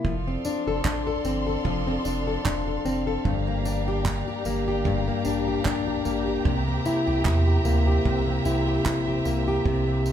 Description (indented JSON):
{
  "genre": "acoustic pop",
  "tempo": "75 BPM",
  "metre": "4/4",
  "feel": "swing 55% on 16ths",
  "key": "F major",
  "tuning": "A4 = 441 Hz",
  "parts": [
    { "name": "fingerpicked plugged-in steel-string acoustic guitar", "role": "accompaniment", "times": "0.0-10.1 s", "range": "G2 to A4", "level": "-25 LUFS", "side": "left 2 dB", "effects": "none" },
    { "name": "warm studio string section", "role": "sustained chords", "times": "0.0-10.1 s", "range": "G4 to C6", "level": "-32 LUFS", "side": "right 1 dB", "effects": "none" },
    { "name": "saturated sub bass", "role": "bass", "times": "0.0-10.1 s", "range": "E1 to E2", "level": "-28 LUFS", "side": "right 1 dB", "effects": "none" },
    { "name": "unplugged drum kit", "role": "drums", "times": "0.0-10.1 s", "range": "handclaps, kick drum, tambourine", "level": "-29 LUFS", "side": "right 3 dB", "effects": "none" }
  ],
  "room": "wet studio reverb, RT60 0.6 s",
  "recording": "heard from further back in the room",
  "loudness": "-22 LUFS",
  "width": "side -10 dB against mid",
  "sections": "0.0-10.1 A section",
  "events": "none",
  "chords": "0.0 F6; 3.3 Gm7; 6.5 C7"
}